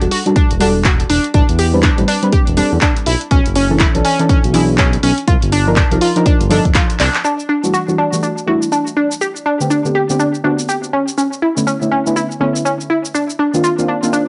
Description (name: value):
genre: deep house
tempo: 122 BPM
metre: 4/4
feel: swing 60% on 16ths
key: E minor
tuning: A4 = 440 Hz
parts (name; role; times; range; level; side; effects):
- deep mellow chord stab; stabs; 0.0-14.2 s; D3 to B4; -20 LUFS; equal; chorus, sidechain pumping, cassette tape, tape echo
- smooth synth bass; bass; 0.0-7.1 s; E1 to E2; -19 LUFS; equal; sidechain pumping
- punchy analog drum machine; drums; 0.0-14.2 s; handclaps, hi-hat, shaker; -24 LUFS; equal; none
- analog pluck; arpeggios; 0.1-14.2 s; C#4 to G4; -20 LUFS; equal; chorus, sidechain pumping, cassette tape, tape echo
- electronic kick drum; drums; 0.4-6.9 s; none; -16 LUFS; equal; none
room: light reverb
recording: home recording on cassette, nothing above 10.7 kHz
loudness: -15 LUFS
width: mono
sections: 0.0-7.2 A section; 7.2-14.3 B section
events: filter sweep on synth stab 0.0-7.2; drum fill 7.0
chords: 0.0 Em11; 1.3 Am11; 3.1 Bm11; 5.3 Cm11; 7.2 Em11; 9.2 Am11; 10.9 Bm11; 13.1 Cm11